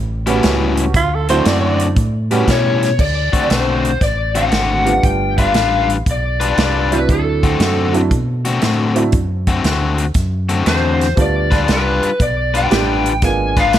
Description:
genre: electric blues shuffle.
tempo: 117 BPM.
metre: 4/4.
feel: swing 67% on 8ths.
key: D mixolydian.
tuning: A4 = 440 Hz.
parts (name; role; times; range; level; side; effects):
fingered electric bass; bass; 0.0-13.8 s; G1 to B2; -19 LUFS; equal; none.
clear upright piano; accompaniment; 0.3-13.5 s; F#3 to G4; -20 LUFS; right 5 dB; none.
crunchy overdriven guitar; riff; 0.3-13.8 s; A2 to B4; -19 LUFS; left 4 dB; none.
natural country drum kit; drums; 0.3-13.8 s; crash cymbal, hi-hat, kick drum, snare drum; -19 LUFS; right 1 dB; none.
growling tenor saxophone; second line; 1.0-1.9 s; F4 to D5; -19 LUFS; right 4 dB; none.
lead guitar through a small cranked amp; melody; 2.5-13.8 s; A4 to G#5; -18 LUFS; left 2 dB; overdrive.
room: light reverb, small room ambience.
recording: none.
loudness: -13 LUFS.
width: side -11 dB against mid.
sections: 0.0-3.0 A section; 3.0-13.8 B section.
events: tenor saxophone solo 0.0-3.0.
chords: 0.0 A7; 1.0 D7; 2.0 A7; 3.0 D7; 5.0 G7; 7.1 D7; 11.2 G7; 13.2 G#dim7.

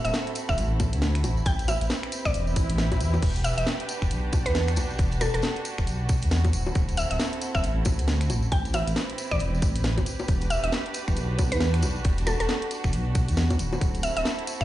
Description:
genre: UK garage, two-step garage.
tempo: 136 BPM.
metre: 4/4.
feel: swing 60% on 16ths.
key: E minor.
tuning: A4 = 440 Hz.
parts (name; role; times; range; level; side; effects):
mallet-like synth pluck; melody; 0.0-14.6 s; A4 to G5; -30 LUFS; right 1 dB; chorus, digital delay.
muted chamber violin section; sustained chords; 0.0-14.6 s; C4 to B4; -35 LUFS; right 3 dB; sidechain pumping.
dark detuned saw bass; bass; 0.0-14.6 s; D1 to E2; -26 LUFS; equal; sidechain pumping.
tambourine; percussion; 0.0-14.6 s; none; -40 LUFS; left 1 dB; none.
garage drum kit; drums; 0.1-14.6 s; bongos, crash cymbal, finger snaps, hi-hat, snare drum; -32 LUFS; left 1 dB; small room ambience.
electronic kick drum; drums; 0.5-14.6 s; none; -25 LUFS; equal; small room ambience.
swell; sound effects; 2.5-3.2 s; none; -35 LUFS; equal; none.
room: light reverb.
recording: played on a big sound system in a bare room, stone room reverb, nothing above 10.3 kHz.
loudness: -23 LUFS.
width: side -14 dB against mid.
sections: 0.0-14.6 A section.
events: swell 2.5-3.2.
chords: 0.0 D9; 1.5 Am7; 3.2 Em7; 6.5 D9; 8.5 Am7; 10.3 Em7; 13.6 D9.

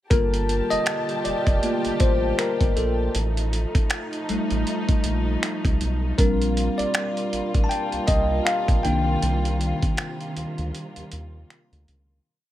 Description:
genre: contemporary R&B.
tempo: 79 BPM.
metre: 4/4.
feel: swing 58% on 16ths.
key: G minor.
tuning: A4 = 441 Hz.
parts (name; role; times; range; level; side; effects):
bell-like tine electric piano; accompaniment; 0.1-12.3 s; Eb3 to A5; -25 LUFS; left 1 dB; lush chorus.
warm studio string section; sustained chords; 0.1-12.2 s; C3 to A5; -30 LUFS; equal; sidechain pumping.
round analog bass; bass; 0.1-12.2 s; F1 to Eb2; -26 LUFS; equal; none.
dusty soul sampler-style drum kit; drums; 0.1-12.1 s; finger snaps, hi-hat, kick drum; -23 LUFS; equal; none.
room: little or no reverb.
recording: none.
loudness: -20 LUFS.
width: side -13 dB against mid.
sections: 0.1-12.3 verse.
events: tine electric piano solo 0.1-12.3; fade-out 9.2-12.3; break 10.7-12.3.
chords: 0.1 Gm7; 3.1 F9/A; 6.2 Bb6; 8.8 Cm7.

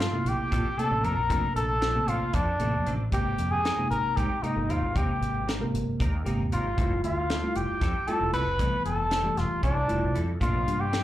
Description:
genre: electric jazz fusion.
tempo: 230 BPM (eighths).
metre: 7/8.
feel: straight.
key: Bb lydian.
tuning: A4 = 440 Hz.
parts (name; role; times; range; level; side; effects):
trumpet with cup mute; melody; 0.0-11.0 s; D4 to Cb5; -29 LUFS; left 1 dB; slapback echo, plate reverb.
reedy silver concert flute; second line; 0.0-11.0 s; D5 to Cb6; -37 LUFS; equal; plate reverb, slapback echo.
clean electric guitar; stabs; 0.0-11.0 s; F3 to Bb4; -40 LUFS; right 2 dB; ensemble chorus, plate reverb, slapback echo.
fretless electric bass; bass; 0.0-11.0 s; E1 to Bb2; -29 LUFS; equal; ensemble chorus.
tight funk drum kit; drums; 0.0-11.0 s; hi-hat, kick drum, snare drum; -31 LUFS; equal; none.
tine electric piano; accompaniment; 0.1-10.9 s; C3 to Bb4; -32 LUFS; equal; wide subtle chorus, plate reverb.
room: light reverb.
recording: live gig heard through the venue's PA, club reverb.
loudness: -24 LUFS.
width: side -13 dB against mid.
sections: 0.0-11.0 A section.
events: none.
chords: 0.0 Bbmaj9; 3.1 Abmaj9; 6.8 Fmaj9; 10.4 Bbmaj9.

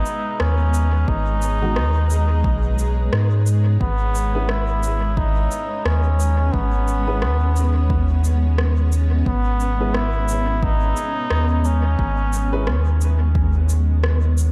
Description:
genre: ambient dub.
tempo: 88 BPM.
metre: 4/4.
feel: swing 59% on 16ths.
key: unclear.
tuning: A4 = 440 Hz.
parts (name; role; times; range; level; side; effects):
trombone with straight mute; melody; 0.0-13.0 s; B3 to E4; -28 LUFS; equal; dub echo.
granular cloud pad; sustained chords; 0.0-14.5 s; G#3 to C#5; -31 LUFS; equal; built-in reverb.
warm sub bass; bass; 0.0-14.5 s; G#1 to G#2; -21 LUFS; equal; none.
electronic shaker and rim click; drums; 0.1-14.5 s; none; -31 LUFS; equal; overdrive, dub echo.
electronic kick drum; drums; 1.1-13.5 s; none; -26 LUFS; equal; overdrive.
dark upright piano; stabs; 1.6-12.6 s; D#3 to B4; -34 LUFS; equal; dub echo.
room: light reverb.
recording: dark, warm production.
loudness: -19 LUFS.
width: mono.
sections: 0.0-14.5 A section.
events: none.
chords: 0.0 G#m; 3.8 C#7(no3)/G#.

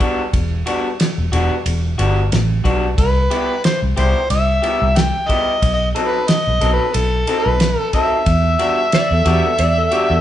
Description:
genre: straight-eighth soul blues.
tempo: 91 BPM.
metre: 4/4.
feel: swing 55% on 16ths.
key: E minor.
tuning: A4 = 441 Hz.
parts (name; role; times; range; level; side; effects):
electric guitar through a small old amp; stabs; 0.0-10.1 s; F#3 to A4; -22 LUFS; left 2 dB; none.
damped 70s drum kit; drums; 0.0-10.1 s; kick drum, ride cymbal, snare drum; -21 LUFS; equal; none.
vintage muted fingered electric bass; bass; 0.3-10.2 s; E1 to E2; -18 LUFS; equal; none.
overdriven harmonica; melody; 3.0-10.2 s; A4 to G5; -18 LUFS; equal; none.
clean lap steel guitar; second line; 8.9-10.2 s; G4 to D5; -22 LUFS; right 2 dB; none.
room: moderate large studio reverb, RT60 1.2 s.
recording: band playing live in one room, nothing above 10.5 kHz.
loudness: -14 LUFS.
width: side -11 dB against mid.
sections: 0.0-10.2 A section.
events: none.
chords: 0.0 Em9; 3.0 Cmaj7; 5.6 B7b9; 8.3 Em9.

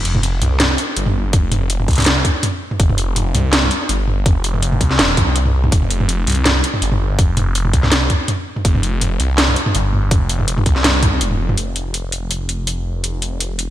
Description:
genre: half-time drum and bass.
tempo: 164 BPM.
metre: 4/4.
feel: swing 54% on 16ths, half-time.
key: unclear.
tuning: A4 = 440 Hz.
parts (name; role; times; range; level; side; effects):
phased detuned saw bass; bass; 0.0-13.7 s; Eb1 to C2; -18 LUFS; equal; phaser.
drum and bass drum kit; drums; 0.1-13.7 s; hi-hat, snare drum, toms; -17 LUFS; equal; gated reverb.
electronic kick drum; drums; 1.3-11.1 s; none; -16 LUFS; equal; none.
room: light reverb.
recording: bright 1980s-style digital production.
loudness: -14 LUFS.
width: side -13 dB against mid.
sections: 0.0-11.6 A section; 11.6-13.7 B section.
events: break 11.2-11.6.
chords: none.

